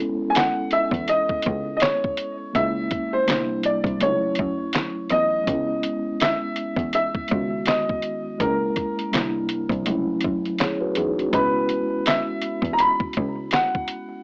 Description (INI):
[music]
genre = lo-fi hip hop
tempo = 82 BPM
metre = 4/4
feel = swing 57% on 16ths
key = C# minor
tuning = A4 = 441 Hz
[part]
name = mellow tine electric piano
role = accompaniment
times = 0.0-14.2 s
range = D#3 to C#5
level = -26 LUFS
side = equal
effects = medium stereo tremolo, cassette tape, low-pass filter
[part]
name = warm upright piano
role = melody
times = 0.3-14.2 s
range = A#4 to B5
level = -23 LUFS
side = equal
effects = low-pass filter, cassette tape, plate reverb
[part]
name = dusty soul sampler-style drum kit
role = drums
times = 0.4-14.1 s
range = handclaps, hi-hat, kick drum, snare drum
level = -25 LUFS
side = equal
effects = none
[part]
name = clear cello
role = bass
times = 0.9-13.5 s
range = C2 to F#2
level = -28 LUFS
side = equal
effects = none
[sound]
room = moderate small room reverb, RT60 0.5 s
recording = home recording on cassette, AM radio sound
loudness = -20 LUFS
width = side -40 dB against mid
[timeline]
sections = 0.0-14.2 A section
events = none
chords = 0.0 C#m9; 2.5 C#m6; 3.3 C9; 4.0 A6/C#; 5.5 C#m9; 8.4 C#m6; 9.1 C9; 9.9 Amaj13/C#; 11.3 C#m7